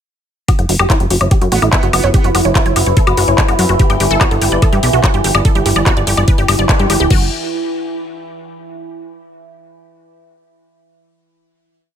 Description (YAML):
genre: psychedelic trance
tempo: 145 BPM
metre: 4/4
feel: straight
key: unclear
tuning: A4 = 441 Hz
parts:
  - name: overtone-sweeping drone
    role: sustained chords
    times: 1.3-7.1 s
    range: E3 to E4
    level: -20 LUFS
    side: right 1 dB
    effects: chorus, built-in reverb, phaser, vintage 12-bit sampler grit, sidechain pumping
  - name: wide unison pluck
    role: riff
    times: 0.5-7.3 s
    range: E4 to G5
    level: -18 LUFS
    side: moving between left 4 dB and right 7 dB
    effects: auto-pan, sidechain pumping, dub echo
  - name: electronic kick drum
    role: drums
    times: 0.5-7.2 s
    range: none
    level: -13 LUFS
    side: equal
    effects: overdrive, studio ambience
  - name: techno drum kit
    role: drums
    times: 0.5-7.2 s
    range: crash cymbal, handclaps, hi-hat, woodblock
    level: -18 LUFS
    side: left 2 dB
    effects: studio ambience
  - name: plucky analog bass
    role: bass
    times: 0.6-7.3 s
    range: D1 to G2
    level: -16 LUFS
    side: equal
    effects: none
  - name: metallic wobble bass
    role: second line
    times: 1.5-2.3 s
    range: B3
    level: -26 LUFS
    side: right 5 dB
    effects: lush chorus, sidechain pumping, high-pass filter, tape echo
room: light reverb, digital ambience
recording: none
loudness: -11 LUFS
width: side -9 dB against mid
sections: 0.5-7.1 groove; 7.1-8.8 final chord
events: filter sweep on synth arpeggio sound 0.5-7.1; band accent 6.7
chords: 0.5 F#5; 3.8 G5; 7.1 N.C.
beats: | 0.48 0.90 1.31 1.73 | 2.14 2.55 2.97 3.38 | 3.79 4.21 4.62 5.04 | 5.45 5.86 6.28 6.69 | 7.11